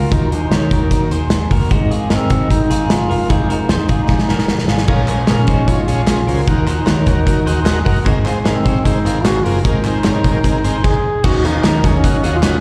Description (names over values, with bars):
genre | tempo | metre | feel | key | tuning
jangly indie pop | 151 BPM | 4/4 | straight | Eb dorian | A4 = 442 Hz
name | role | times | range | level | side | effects
mellow duduk | melody | 0.0-12.6 s | C4 to Ab4 | -22 LUFS | equal | slapback echo, plate reverb
picked steel-string acoustic guitar | accompaniment | 0.0-12.6 s | F2 to Bb4 | -28 LUFS | equal | none
electric guitar through a small old amp | arpeggios | 0.0-12.6 s | Db4 to Db5 | -26 LUFS | equal | tremolo, plate reverb, slapback echo
vintage muted picked electric bass | bass | 0.0-12.6 s | F1 to Eb3 | -21 LUFS | equal | none
loose indie drum kit | drums | 0.1-12.5 s | crash cymbal, hi-hat, kick drum, snare drum | -19 LUFS | equal | none
combo organ | accompaniment | 4.9-12.6 s | Bb3 to Db5 | -26 LUFS | equal | plate reverb, slapback echo
group handclap | percussion | 5.1-12.5 s | none | -33 LUFS | equal | none
room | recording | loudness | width
light reverb | live gig heard through the venue's PA, recital hall reverb | -15 LUFS | mono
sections
0.0-11.2 A section; 11.2-12.6 B section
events
drum fill 4.1-4.9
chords
0.1 Ebm; 1.7 Abadd9; 3.1 Fm; 4.9 Bbm7; 6.5 Ebm; 8.1 Abadd9; 11.2 Ebm7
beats
| 0.12 0.52 0.92 1.31 | 1.71 2.11 2.51 2.91 | 3.30 3.70 4.10 4.50 | 4.89 5.29 5.68 6.08 | 6.48 6.87 7.27 7.67 | 8.06 8.46 8.86 9.26 | 9.65 10.05 10.45 10.85 | 11.24 11.64 12.04 12.44